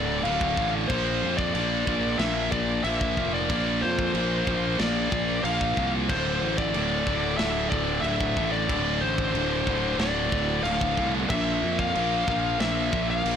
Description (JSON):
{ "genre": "heavy metal", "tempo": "92 BPM", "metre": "4/4", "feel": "straight", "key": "unclear", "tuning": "A4 = 440 Hz", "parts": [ { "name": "high-gain lead guitar", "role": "melody", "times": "0.0-13.4 s", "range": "C5 to F5", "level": "-28 LUFS", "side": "left 3 dB", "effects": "distortion, digital delay" }, { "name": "biting overdriven guitar", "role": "riff", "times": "0.0-13.4 s", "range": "D2 to Bb3", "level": "-32 LUFS", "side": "equal", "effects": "none" }, { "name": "scooped high-gain guitar", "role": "riff", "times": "0.0-13.4 s", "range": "D2 to Bb3", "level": "-32 LUFS", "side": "left 12 dB", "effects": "distortion" }, { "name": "scooped high-gain guitar", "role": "riff", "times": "0.0-13.4 s", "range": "D2 to Bb3", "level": "-31 LUFS", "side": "right 16 dB", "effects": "distortion" }, { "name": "fuzz fingered electric bass", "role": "bass", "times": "0.0-13.4 s", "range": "D1 to F2", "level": "-30 LUFS", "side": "right 1 dB", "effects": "overdrive, transformer saturation" }, { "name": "tight metal drum kit", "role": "drums", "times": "0.3-13.4 s", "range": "crash cymbal, kick drum, snare drum", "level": "-32 LUFS", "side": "right 1 dB", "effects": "soft clipping on kick" } ], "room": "light reverb", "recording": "blown-out, overdriven recording, overdrive", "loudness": "-23 LUFS", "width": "side -8 dB against mid", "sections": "0.0-13.4 A section", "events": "none", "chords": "0.0 D5; 0.9 Bb; 6.1 D5; 11.3 Bb5", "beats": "0.25 | 0.90 1.55 2.20 2.85 | 3.50 4.15 4.80 5.45 | 6.10 6.75 7.40 8.05 | 8.70 9.35 10.00 10.65 | 11.30 11.96 12.61 13.26" }